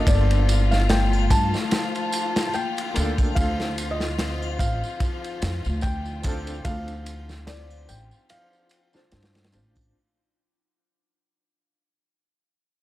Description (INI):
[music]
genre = trip hop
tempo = 73 BPM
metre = 4/4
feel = swing 56% on 16ths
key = unclear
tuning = A4 = 440 Hz
[part]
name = felt-muted upright piano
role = melody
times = 0.0-9.5 s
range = D5 to A5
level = -30 LUFS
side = left 1 dB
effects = tape echo
[part]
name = warm upright piano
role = accompaniment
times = 0.0-10.0 s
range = D3 to C5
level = -35 LUFS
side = left 1 dB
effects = tremolo, tape echo
[part]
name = dark studio string section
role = sustained chords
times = 0.0-10.0 s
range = F4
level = -33 LUFS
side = left 5 dB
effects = vintage 12-bit sampler grit
[part]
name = Celtic harp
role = arpeggios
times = 0.0-11.9 s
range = F3 to D4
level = -34 LUFS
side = left 6 dB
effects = tape echo
[part]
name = upright bass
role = bass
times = 0.0-9.9 s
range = G1 to G2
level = -24 LUFS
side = equal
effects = none
[part]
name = crunchy breakbeat drum kit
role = drums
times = 0.1-9.9 s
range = kick drum, ride cymbal, snare drum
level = -26 LUFS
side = equal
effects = none
[part]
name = tambourine and triangle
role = percussion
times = 0.1-9.9 s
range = none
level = -39 LUFS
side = right 4 dB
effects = none
[sound]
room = small room ambience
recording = none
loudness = -21 LUFS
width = side -16 dB against mid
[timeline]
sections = 0.0-9.9 A section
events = fade-out 1.2-9.9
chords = 0.0 Gm9; 3.4 Dm7